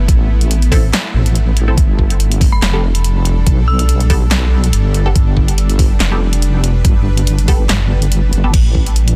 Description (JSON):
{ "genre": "deep dubstep", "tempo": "142 BPM", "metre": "4/4", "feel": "swing 54% on 16ths, half-time", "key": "unclear", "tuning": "A4 = 440 Hz", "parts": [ { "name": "bowed-like drone", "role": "sustained chords", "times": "0.0-9.2 s", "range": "G3 to B4", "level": "-28 LUFS", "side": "equal", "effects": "built-in reverb" }, { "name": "deep soft wobble bass", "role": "bass", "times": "0.0-9.2 s", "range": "F1 to B1", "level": "-15 LUFS", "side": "equal", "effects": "chorus, tube saturation" }, { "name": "deep house drum kit", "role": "drums", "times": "0.1-9.2 s", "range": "crash cymbal, handclaps, hi-hat, snare drum", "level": "-23 LUFS", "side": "equal", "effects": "none" }, { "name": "electronic kick drum", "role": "drums", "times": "0.1-8.8 s", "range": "none", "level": "-14 LUFS", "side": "equal", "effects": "none" }, { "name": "filtered dub chord stab", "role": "stabs", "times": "0.7-8.5 s", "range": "B3 to A4", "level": "-28 LUFS", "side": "equal", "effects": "phaser, dub echo" }, { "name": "dark detuned synth bell", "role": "melody", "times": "2.5-3.9 s", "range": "B5 to E6", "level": "-29 LUFS", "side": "equal", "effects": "chorus, tremolo, dub echo" } ], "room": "little or no reverb", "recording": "dense, heavily limited modern master", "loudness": "-13 LUFS", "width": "mono", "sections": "0.0-9.2 A section", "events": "none", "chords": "0.0 Am; 1.8 Gadd9; 8.5 A5" }